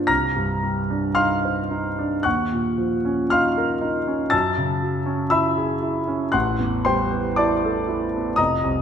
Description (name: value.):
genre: classical, impressionist solo piano.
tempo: 55-61 BPM.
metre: 4/4.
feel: rubato.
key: unclear.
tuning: A4 = 440 Hz.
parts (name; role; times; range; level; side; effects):
warm concert grand piano; solo; 0.0-8.8 s; F1 to Bb6; -19 LUFS; equal; none.
room: moderate concert hall reverb, RT60 1.8 s.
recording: none.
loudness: -19 LUFS.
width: side -8 dB against mid.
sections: 0.0-8.8 A section.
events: none.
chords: 0.1 Cm9; 2.3 Ebm9; 4.3 Gbm9; 6.3 Am9.